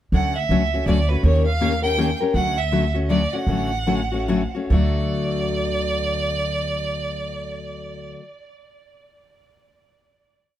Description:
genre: acoustic string swing (jazz manouche)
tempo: 138-163 BPM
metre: 3/4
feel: swing 62% on 8ths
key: D major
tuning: A4 = 440 Hz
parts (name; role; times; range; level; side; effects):
- bright violin; melody; 0.1-8.1 s; B4 to G5; -25 LUFS; right 3 dB; tape echo
- picked steel-string acoustic guitar; accompaniment; 0.1-8.2 s; D3 to Bb4; -23 LUFS; left 4 dB; none
- upright bass; bass; 0.1-8.1 s; A1 to Eb2; -23 LUFS; right 1 dB; none
room: light reverb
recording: dark, warm production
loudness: -19 LUFS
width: side -12 dB against mid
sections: 0.1-4.7 A section; 4.7-7.3 final chord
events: slowing down 2.3-4.7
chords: 0.1 Dmaj7; 1.2 Eb9; 2.3 Dmaj7; 4.7 D

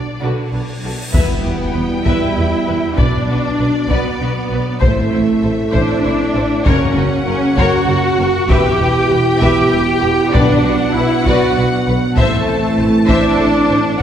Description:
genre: cinematic, epic orchestral film score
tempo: 65 BPM (dotted quarters)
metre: 6/8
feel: straight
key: B minor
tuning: A4 = 440 Hz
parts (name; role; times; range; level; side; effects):
- warm symphonic violin section; melody; 0.0-14.0 s; D5 to A5; -26 LUFS; left 3 dB; none
- dark French horn section; sustained chords; 0.0-14.0 s; B3 to F#4; -22 LUFS; left 1 dB; none
- rich symphonic cello section; bass; 0.0-14.0 s; A3 to G4; -18 LUFS; right 1 dB; none
- cymbal swell and impact; sound effects; 0.5-3.0 s; none; -28 LUFS; left 1 dB; none
- rich symphonic violin section; second line; 0.2-14.0 s; B3 to F#5; -22 LUFS; left 3 dB; none
- warm symphonic viola section; accompaniment; 0.2-14.0 s; D3 to G4; -22 LUFS; equal; none
- warm symphonic double bass section; bass; 0.2-13.8 s; E1 to E2; -20 LUFS; right 2 dB; none
- warm trombone section; sustained chords; 1.1-14.0 s; A2 to B3; -23 LUFS; right 2 dB; none
- solo taiko drums; drums; 1.1-13.7 s; none; -19 LUFS; left 1 dB; none
- timpani; percussion; 10.3-11.2 s; B2; -24 LUFS; equal; none
room: wet scoring stage reverb, RT60 2.0 s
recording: heard from further back in the room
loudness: -12 LUFS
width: side -9 dB against mid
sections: 0.0-1.1 A section; 1.1-14.0 B section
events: cymbal swell 0.5-1.1; impact 1.1-3.0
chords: 0.0 Bm; 1.1 Em; 3.0 Bm; 4.8 Am; 6.7 F#; 8.5 Em; 10.3 Bm; 12.2 Am

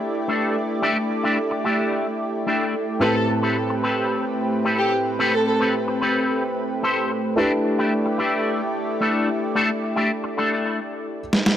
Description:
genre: nu-disco, nu disco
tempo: 110 BPM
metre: 4/4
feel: straight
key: A minor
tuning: A4 = 440 Hz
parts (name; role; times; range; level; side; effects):
- dark grand piano; accompaniment; 0.0-11.2 s; A2 to B4; -27 LUFS; equal; analog delay
- lush unison pad; sustained chords; 0.0-11.2 s; A3 to D5; -25 LUFS; right 1 dB; chorus
- electric guitar with an envelope filter; riff; 0.3-10.8 s; A3 to C5; -23 LUFS; left 2 dB; ensemble chorus, low-pass filter, analog delay
- dark chamber violin section; melody; 3.0-5.6 s; G4 to A4; -25 LUFS; equal; tape echo
- electronic snare drum; drums; 11.3-11.6 s; none; -16 LUFS; right 1 dB; overdrive, studio reverb
room: light reverb, small room ambience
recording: dry, gritty hardware recording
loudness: -20 LUFS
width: side -10 dB against mid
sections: 0.0-11.6 A section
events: drum fill 11.3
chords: 0.0 Em7/A; 3.0 Am9; 7.4 Em7/A

